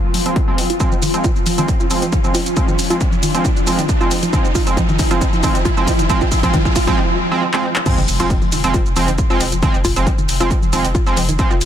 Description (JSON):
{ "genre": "driving peak-time techno", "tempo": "136 BPM", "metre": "4/4", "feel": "straight", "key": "F minor", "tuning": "A4 = 440 Hz", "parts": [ { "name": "swarming drone", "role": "drone", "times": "0.0-7.0 s", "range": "F3 to F4", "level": "-25 LUFS", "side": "left 2 dB", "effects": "built-in reverb, sidechain pumping" }, { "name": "riser and impact", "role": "sound effects", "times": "0.0-9.6 s", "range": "none", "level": "-26 LUFS", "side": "right 1 dB", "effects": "none" }, { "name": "warbly dusty pluck", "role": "riff", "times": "0.1-11.5 s", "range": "Eb3 to F4", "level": "-23 LUFS", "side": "equal", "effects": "chorus, tube saturation, sidechain pumping, ping-pong delay" }, { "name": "punchy analog drum machine", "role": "drums", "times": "0.1-11.7 s", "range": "crash cymbal, handclaps, hi-hat, shaker", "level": "-23 LUFS", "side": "left 1 dB", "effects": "overdrive" }, { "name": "sync-sweep polysynth", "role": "stabs", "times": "0.3-11.5 s", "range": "F3 to C4", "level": "-20 LUFS", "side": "right 3 dB", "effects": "chorus, sidechain pumping, ping-pong delay" }, { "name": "electronic kick drum", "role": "drums", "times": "0.4-11.5 s", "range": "none", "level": "-17 LUFS", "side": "equal", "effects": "none" }, { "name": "saturated sub bass", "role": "bass", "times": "8.0-11.7 s", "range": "F1", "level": "-22 LUFS", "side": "equal", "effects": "overdrive, sidechain pumping, low-pass filter" } ], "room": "light reverb", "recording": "dense, heavily limited modern master", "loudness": "-14 LUFS", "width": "side -10 dB against mid", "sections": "0.0-7.9 A section; 7.9-11.7 B section", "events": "build-up 0.0-7.9; riser 0.0-7.0; filter sweep on synth arpeggio sound 0.0-7.9; filter sweep on analog polysynth 0.0-7.9; drum fill 0.8-7.0, 7.5-7.9; break 7.0-7.9; drop 7.9-11.7; impact 7.9-9.6", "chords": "0.0 Fm" }